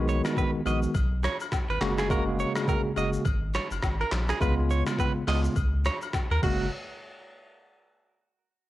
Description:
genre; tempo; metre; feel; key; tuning
afrobeats; 104 BPM; 4/4; swing 58% on 16ths; F# major; A4 = 441 Hz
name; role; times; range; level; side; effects
tine electric piano; accompaniment; 0.0-6.7 s; C#3 to F#4; -28 LUFS; equal; fast stereo tremolo, cassette tape
warm sub bass; bass; 0.0-6.7 s; F#1 to D#2; -28 LUFS; equal; none
direct-recorded clean electric guitar; riff; 0.1-6.7 s; F#4 to D#5; -33 LUFS; right 5 dB; tremolo, cassette tape, tape echo
boom bap sampler-style drum kit; drums; 0.1-6.6 s; crash cymbal, finger snaps, handclaps, hi-hat, kick drum, rim click, shaker; -30 LUFS; equal; overdrive
agogo bells and woodblock; percussion; 0.3-6.7 s; none; -38 LUFS; left 10 dB; none
room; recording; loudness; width
little or no reverb; home recording on cassette; -24 LUFS; side -15 dB against mid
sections
0.0-6.7 A section; 6.7-8.7 B section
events
none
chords
0.0 B6; 1.8 F#add9; 4.4 C#7; 6.4 F#add9; 6.7 N.C.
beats
0.37 0.95 1.52 | 2.10 2.68 3.25 3.83 | 4.41 4.99 5.56 6.14

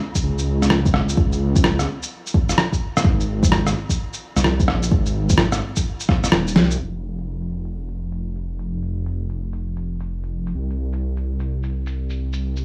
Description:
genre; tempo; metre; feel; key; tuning
future garage; 128 BPM; 4/4; swing 64% on 16ths; unclear; A4 = 440 Hz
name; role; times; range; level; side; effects
dark detuned saw bass; bass; 0.2-12.6 s; Eb1 to Db2; -25 LUFS; equal; sidechain pumping
electronic kick drum; drums; 0.2-6.2 s; none; -22 LUFS; equal; studio reverb
electronic shaker, rim click and snare drum; drums; 0.2-12.6 s; none; -23 LUFS; equal; studio reverb
room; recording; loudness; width
digital ambience; vinyl crackle, low-pass filter, small room ambience; -21 LUFS; mono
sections
0.0-6.8 A section; 6.8-12.6 B section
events
kick drops out 6.3-6.8; drum fill 6.6; filter sweep 6.8-12.6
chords
none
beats
0.23 0.70 | 1.17 1.64 2.11 2.58 | 3.04 3.51 3.98 4.45 | 4.92 5.39 5.86 6.33 | 6.79 7.26 7.73 8.20 | 8.67 9.14 9.61 10.07 | 10.54 11.01 11.48 11.95 | 12.42

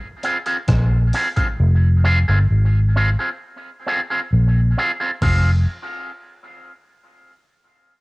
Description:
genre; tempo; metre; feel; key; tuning
dub reggae; 66 BPM; 4/4; straight; F minor; A4 = 441 Hz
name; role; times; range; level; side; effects
electric guitar with an envelope filter; accompaniment; 0.2-5.5 s; C4 to Ab4; -22 LUFS; right 1 dB; cassette tape, tape echo
breakbeat sampler-style drum kit; drums; 0.2-5.4 s; crash cymbal, hi-hat, kick drum, rim click; -24 LUFS; equal; cassette tape
vintage muted fingered electric bass; bass; 0.7-5.6 s; F1 to Bb1; -14 LUFS; equal; transformer saturation
room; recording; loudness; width
digital ambience; home recording on cassette; -15 LUFS; side -24 dB against mid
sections
0.0-5.2 A section; 5.2-8.0 B section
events
part muted 1.6-5.2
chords
0.0 Fm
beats
0.69 | 1.59 2.50 3.41 4.31 | 5.22

